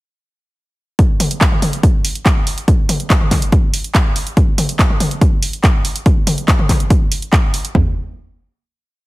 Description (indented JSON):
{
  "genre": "techno",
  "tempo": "142 BPM",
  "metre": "4/4",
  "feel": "straight",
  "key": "none",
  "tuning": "none",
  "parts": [
    { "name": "techno drum kit", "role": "drums", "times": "1.0-7.9 s", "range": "kick drum, toms", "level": "-13 LUFS", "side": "equal", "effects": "none" },
    { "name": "techno drum kit", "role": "drums", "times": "1.0-7.7 s", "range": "handclaps, hi-hat, toms", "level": "-18 LUFS", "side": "equal", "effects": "none" }
  ],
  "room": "little or no reverb",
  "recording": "heavily compressed radio sound, multiband compression",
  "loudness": "-12 LUFS",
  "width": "side -20 dB against mid",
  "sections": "1.0-7.8 drop; 7.8-9.1 final hit",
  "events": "drop 1.0-7.8",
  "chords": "none"
}